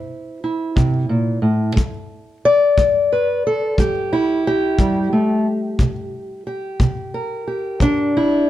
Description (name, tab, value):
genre	acoustic country blues, solo or duo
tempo	60 BPM (dotted quarters)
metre	12/8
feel	straight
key	unclear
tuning	A4 = 436 Hz
part	fingerpicked old ladder-braced acoustic guitar	melody	0.0-8.5 s	A2 to D5	-17 LUFS	equal	none
part	kick drum	drums	0.8-8.0 s	none	-20 LUFS	left 1 dB	none
room	light reverb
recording	dark, warm production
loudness	-16 LUFS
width	side -13 dB against mid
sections	0.0-8.5 A section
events	none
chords	0.0 C; 1.8 G5; 5.8 C7(no3)